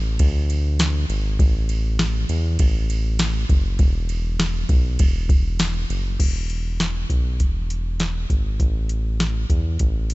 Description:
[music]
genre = dream pop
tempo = 100 BPM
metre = 4/4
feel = straight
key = E mixolydian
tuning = A4 = 437 Hz
[part]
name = round analog bass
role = bass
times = 0.0-10.1 s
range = E1 to E2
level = -22 LUFS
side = equal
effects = none
[part]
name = soft vintage rhythm box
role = drums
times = 0.2-10.1 s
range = crash cymbal, hi-hat, kick drum, ride cymbal, snare drum, tambourine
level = -21 LUFS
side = equal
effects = overdrive
[sound]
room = little or no reverb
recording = nothing above 7.9 kHz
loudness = -19 LUFS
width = side -21 dB against mid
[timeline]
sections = 0.0-6.2 A section; 6.2-10.1 B section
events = none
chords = none

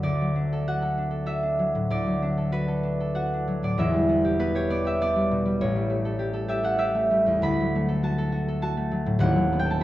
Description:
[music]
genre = classical, solo harp piece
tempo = 90-104 BPM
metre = 3/4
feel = rubato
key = D major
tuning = A4 = 440 Hz
[part]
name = concert harp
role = solo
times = 0.0-9.8 s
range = D#1 to B5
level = -22 LUFS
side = equal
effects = none
[sound]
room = moderate recital hall reverb, RT60 1.3 s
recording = dark, warm production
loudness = -22 LUFS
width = side -15 dB against mid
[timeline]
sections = 0.1-9.8 A section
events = none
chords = 0.1 D; 3.8 Em; 5.6 A7; 7.5 D; 9.2 B7/D#

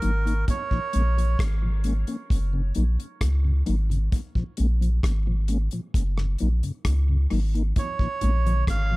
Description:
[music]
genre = dub reggae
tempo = 66 BPM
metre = 4/4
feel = straight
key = Bb minor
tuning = A4 = 440 Hz
[part]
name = melodica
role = melody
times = 0.0-1.4, 7.8-9.0 s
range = Bb4 to F5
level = -31 LUFS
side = right 5 dB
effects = dub echo
[part]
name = mellow tonewheel organ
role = accompaniment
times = 0.0-9.0 s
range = Gb2 to Eb4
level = -31 LUFS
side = left 2 dB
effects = chorus vibrato, stopped rotary speaker, analog delay
[part]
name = soft dub sub bass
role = bass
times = 0.0-9.0 s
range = Gb1 to Db2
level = -22 LUFS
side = equal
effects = none
[part]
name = damped 70s drum kit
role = drums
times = 0.0-8.9 s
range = hi-hat, kick drum, rim click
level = -26 LUFS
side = equal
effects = none
[part]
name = congas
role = percussion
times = 0.5-0.7, 7.8-8.9 s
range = none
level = -38 LUFS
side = right 3 dB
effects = dub echo
[sound]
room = small room ambience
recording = echo-heavy mix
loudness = -22 LUFS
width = side -21 dB against mid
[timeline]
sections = 0.0-9.0 A section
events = part muted 0.5-7.8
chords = 0.5 Bbm7; 2.3 Gb; 4.1 Bb7(no3); 5.9 Gb6; 7.8 Bbm7

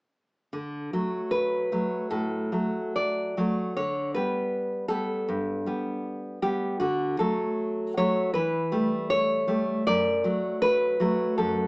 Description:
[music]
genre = romantic piece for solo classical guitar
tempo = 68-82 BPM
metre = 4/4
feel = rubato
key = D major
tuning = A4 = 440 Hz
[part]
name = nylon-string guitar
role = solo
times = 0.5-11.7 s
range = F#2 to D5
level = -24 LUFS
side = equal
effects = none
[sound]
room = moderate large studio reverb, RT60 0.8 s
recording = band playing live in one room, small speaker sound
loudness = -24 LUFS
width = side -28 dB against mid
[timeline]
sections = 0.5-11.7 A section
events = none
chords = 0.5 D; 3.8 G/D; 6.8 D; 8.4 A7/E; 9.9 D/F#

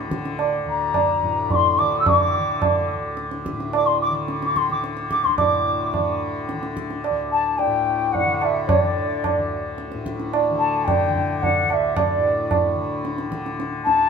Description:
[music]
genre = indian classical, Hindustani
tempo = 109 BPM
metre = 3/4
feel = straight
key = unclear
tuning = A4 = 440 Hz
[part]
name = tanpura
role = drone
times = 0.0-14.1 s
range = D2 to D3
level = -27 LUFS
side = left 2 dB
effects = none
[part]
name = tabla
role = percussion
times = 0.1-14.1 s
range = none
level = -23 LUFS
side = right 4 dB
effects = none
[part]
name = mellow bansuri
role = melody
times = 0.7-14.1 s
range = D5 to E6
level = -21 LUFS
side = left 4 dB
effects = tape echo
[sound]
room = wet stone room reverb, RT60 1.3 s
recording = band playing live in one room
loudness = -19 LUFS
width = side -6 dB against mid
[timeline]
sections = 0.0-5.4 A section; 5.4-14.1 B section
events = none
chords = none

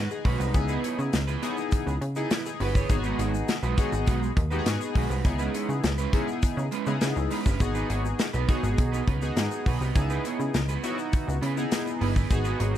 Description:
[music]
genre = early-eighties boogie funk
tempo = 102 BPM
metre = 4/4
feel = straight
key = unclear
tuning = A4 = 440 Hz
[part]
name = chorused polysynth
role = accompaniment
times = 0.0-12.8 s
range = G#3 to C#5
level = -31 LUFS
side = left 2 dB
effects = none
[part]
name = plucky analog bass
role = bass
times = 0.0-12.8 s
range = G1 to C#3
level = -28 LUFS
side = equal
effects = none
[part]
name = electric guitar at the edge of break-up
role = riff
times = 0.1-12.8 s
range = G#3 to C#5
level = -33 LUFS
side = right 8 dB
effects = analog chorus
[part]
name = egg shaker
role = percussion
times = 0.1-12.8 s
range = none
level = -46 LUFS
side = left 10 dB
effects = none
[part]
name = modern studio drum kit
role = drums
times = 0.3-12.7 s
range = hi-hat, kick drum, snare drum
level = -27 LUFS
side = equal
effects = none
[sound]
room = little or no reverb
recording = none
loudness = -24 LUFS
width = side -11 dB against mid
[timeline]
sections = 0.0-12.8 A section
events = none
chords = 0.0 G#m7; 0.5 C#m7; 2.9 G#m7; 5.2 C#m7; 7.6 G#m7; 10.0 C#m7

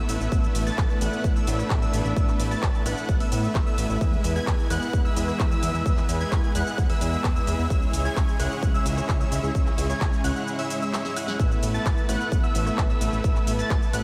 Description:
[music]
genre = EDM, festival progressive house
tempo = 130 BPM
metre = 4/4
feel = straight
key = A major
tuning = A4 = 436 Hz
[part]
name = muted studio string section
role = sustained chords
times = 0.0-14.0 s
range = C#3 to B4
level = -38 LUFS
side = equal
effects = sidechain pumping
[part]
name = plucky unison lead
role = arpeggios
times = 0.0-14.0 s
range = E6 to A6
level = -36 LUFS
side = equal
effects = lush chorus, sidechain pumping, analog delay
[part]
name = dense compressed supersaw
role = riff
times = 0.0-14.0 s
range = G#3 to A5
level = -32 LUFS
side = equal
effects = sidechain pumping, analog delay
[part]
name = fat analog bass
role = bass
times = 0.1-14.0 s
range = A1 to A2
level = -31 LUFS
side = equal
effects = sidechain pumping
[part]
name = house drum kit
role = drums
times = 0.1-14.0 s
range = handclaps, hi-hat, rim click, shaker, snare drum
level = -37 LUFS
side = equal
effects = small room ambience
[part]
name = electronic kick drum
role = drums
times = 0.3-13.8 s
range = none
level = -26 LUFS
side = equal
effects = small room ambience
[sound]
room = moderate lush hall reverb, RT60 1.9 s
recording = dreamy mix soaked in reverb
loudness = -24 LUFS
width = mono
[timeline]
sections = 0.0-14.0 A section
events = drum fill 10.9-11.4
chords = 0.0 Asus2; 4.0 E; 7.7 C#m; 11.4 Asus2

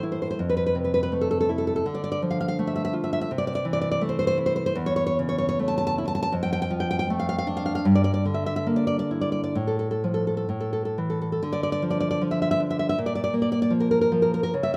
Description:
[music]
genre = romantic piece for solo classical guitar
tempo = 60-85 BPM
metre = 2/4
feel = rubato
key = A minor, D minor from 4.8 s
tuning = A4 = 440 Hz
[part]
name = nylon-string guitar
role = solo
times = 0.0-14.8 s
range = E2 to A5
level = -25 LUFS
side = equal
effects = none
[sound]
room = moderate recital hall reverb, RT60 1.7 s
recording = none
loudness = -25 LUFS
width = mono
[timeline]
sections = 0.0-11.4 A section; 11.4-14.8 B section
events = none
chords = 0.4 Fmaj7; 1.8 Dm; 3.3 Am/C; 4.8 A/E; 6.3 Dm/F; 7.8 Em7b5/G; 9.6 F/A; 10.5 A5; 11.4 Dm; 13.0 Bb5

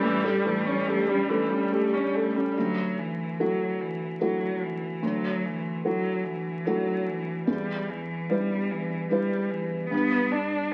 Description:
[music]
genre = neoclassical piano and strings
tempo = 73 BPM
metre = 3/4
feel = rubato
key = D major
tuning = A4 = 445 Hz
[part]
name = warm cello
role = second line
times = 0.0-10.7 s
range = E3 to D4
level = -32 LUFS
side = equal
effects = none
[part]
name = dark grand piano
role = accompaniment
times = 0.0-10.7 s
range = D2 to B4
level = -30 LUFS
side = equal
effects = none
[part]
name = warm viola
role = accompaniment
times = 0.0-2.6 s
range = E3 to C#4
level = -32 LUFS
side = equal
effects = none
[sound]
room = moderate large studio reverb, RT60 1.3 s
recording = very old 78 rpm record, vinyl crackle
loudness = -27 LUFS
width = mono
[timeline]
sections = 0.0-2.5 A section; 2.5-10.7 B section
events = none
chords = 0.0 A7; 2.5 Dadd9; 7.5 Em; 9.9 G

